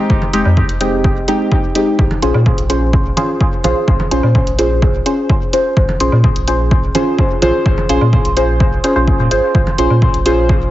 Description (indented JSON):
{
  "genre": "dub techno",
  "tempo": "127 BPM",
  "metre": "4/4",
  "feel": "straight",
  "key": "unclear",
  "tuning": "A4 = 441 Hz",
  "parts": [
    { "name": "deep mellow chord stab", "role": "stabs", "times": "0.0-10.5 s", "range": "Ab3 to C5", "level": "-15 LUFS", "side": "equal", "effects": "chorus, phaser, sidechain pumping, dub echo" },
    { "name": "pure sine sub bass", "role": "bass", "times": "0.1-10.7 s", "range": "F1 to Bb2", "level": "-16 LUFS", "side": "equal", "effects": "sidechain pumping" },
    { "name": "electronic kick drum", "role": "drums", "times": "0.1-10.6 s", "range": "none", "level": "-15 LUFS", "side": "equal", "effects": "none" },
    { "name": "congas and woodblock", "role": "percussion", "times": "0.2-10.0 s", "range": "none", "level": "-25 LUFS", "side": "right 2 dB", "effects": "sidechain pumping on perc, dub echo" },
    { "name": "electronic hi-hat", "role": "drums", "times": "0.3-10.4 s", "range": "none", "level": "-24 LUFS", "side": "right 1 dB", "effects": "none" }
  ],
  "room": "light reverb, digital ambience",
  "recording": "heavily compressed radio sound, vinyl crackle, nothing above 7.8 kHz",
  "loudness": "-11 LUFS",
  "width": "side -14 dB against mid",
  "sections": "0.0-10.7 A section",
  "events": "none",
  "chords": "0.0 Fm7; 2.0 Bbm7"
}